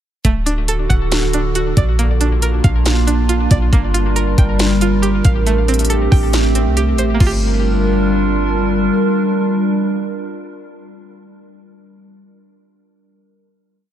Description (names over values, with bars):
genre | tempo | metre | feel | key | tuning
hip hop, atmospheric cloud-rap | 138 BPM | 4/4 | half-time | G minor | A4 = 441 Hz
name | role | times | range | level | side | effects
warbly tape-like pad | sustained chords | 0.6-11.4 s | D3 to Bb4 | -18 LUFS | right 1 dB | chorus, built-in reverb, sidechain pumping
string-like resonator pluck | arpeggios | 0.2-12.1 s | A3 to G5 | -23 LUFS | right 2 dB | chorus, low-pass filter, ping-pong delay
clean 808-style bass | bass | 0.2-8.9 s | D1 to C2 | -16 LUFS | equal | none
trap drum kit | drums | 0.2-7.3 s | crash cymbal, hi-hat, kick drum, snare drum | -18 LUFS | equal | none
room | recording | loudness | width
little or no reverb | none | -13 LUFS | side -10 dB against mid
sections
0.2-7.2 verse; 7.2-10.7 final chord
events
none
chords
0.2 D; 2.0 Bb; 3.7 Gm7; 5.5 Am7; 7.2 Gm7